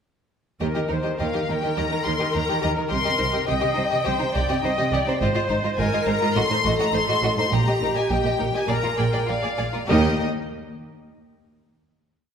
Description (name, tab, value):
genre	quick classical-period movement for string orchestra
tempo	103 BPM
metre	4/4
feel	straight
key	Eb major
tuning	A4 = 440 Hz
part	clear studio violin section	second line	0.6-10.2 s	Eb4 to Eb5	-27 LUFS	left 1 dB	none
part	rich chamber viola section	accompaniment	0.6-10.2 s	Bb3 to Eb5	-26 LUFS	equal	none
part	clear studio double bass section	bass	0.6-10.2 s	Ab1 to Eb2	-28 LUFS	right 3 dB	none
part	rich studio cello section	bass	0.6-10.2 s	Eb2 to Eb3	-28 LUFS	right 3 dB	none
part	clear studio violin section	melody	1.2-10.2 s	Eb5 to C6	-26 LUFS	left 4 dB	none
room	wet concert hall reverb, RT60 1.9 s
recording	none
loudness	-20 LUFS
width	side -7 dB against mid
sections	0.6-9.9 theme; 9.9-12.3 final chord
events	none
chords	0.6 Eb; 2.9 Cm; 5.2 Fm7/Ab; 6.3 Adim; 7.5 Eb/Bb; 8.7 Bb7; 9.9 Eb5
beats	| 0.61 1.20 1.78 2.35 | 2.92 3.49 4.06 4.63 | 5.20 5.78 6.35 6.93 | 7.51 8.10 8.69 9.29 | 9.90